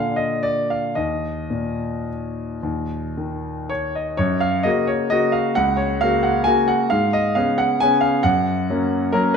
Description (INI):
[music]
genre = classical, piano waltz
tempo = 104-141 BPM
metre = 3/4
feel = rubato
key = F# major from 4.2 s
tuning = A4 = 440 Hz
[part]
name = bright baby grand piano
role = solo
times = 0.0-9.4 s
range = C#2 to G#5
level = -18 LUFS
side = equal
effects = none
[sound]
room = wet recital hall reverb, RT60 1.7 s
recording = none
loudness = -18 LUFS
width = side -6 dB against mid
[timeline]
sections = 0.0-4.2 A section; 4.2-9.4 B section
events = none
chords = 0.0 Bb; 1.0 Eb5; 4.2 F#; 6.9 C#5/G#; 8.2 F#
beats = 0.45 | 0.97 1.50 2.08 | 2.63 3.16 3.69 | 4.20 4.65 5.11 | 5.56 6.02 6.47 | 6.91 7.35 7.80 | 8.24 8.68 9.12